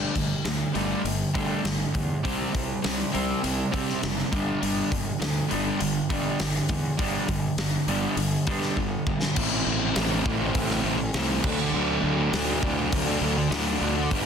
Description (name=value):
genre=quiet-loud alternative rock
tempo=101 BPM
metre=4/4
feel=straight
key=unclear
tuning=A4 = 441 Hz
part: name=electric guitar through a small old amp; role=arpeggios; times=0.0-9.3 s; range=C3 to D4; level=-32 LUFS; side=left 1 dB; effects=wide subtle chorus
part: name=fuzz guitar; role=riff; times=0.0-14.3 s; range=G2 to E4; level=-26 LUFS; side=right 1 dB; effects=distortion
part: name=fuzz fingered electric bass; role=bass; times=0.0-14.3 s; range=F#1 to C3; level=-31 LUFS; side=equal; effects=overdrive
part: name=big rock drum kit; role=drums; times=0.2-14.2 s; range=crash cymbal, hi-hat, kick drum, snare drum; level=-29 LUFS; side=left 1 dB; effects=none
room=light reverb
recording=dense, heavily limited modern master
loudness=-23 LUFS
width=side -7 dB against mid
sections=0.0-9.4 A section; 9.4-14.3 B section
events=drum fill 8.8-9.4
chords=0.0 Gsus2; 2.2 C5; 4.3 G; 9.4 Am; 11.4 D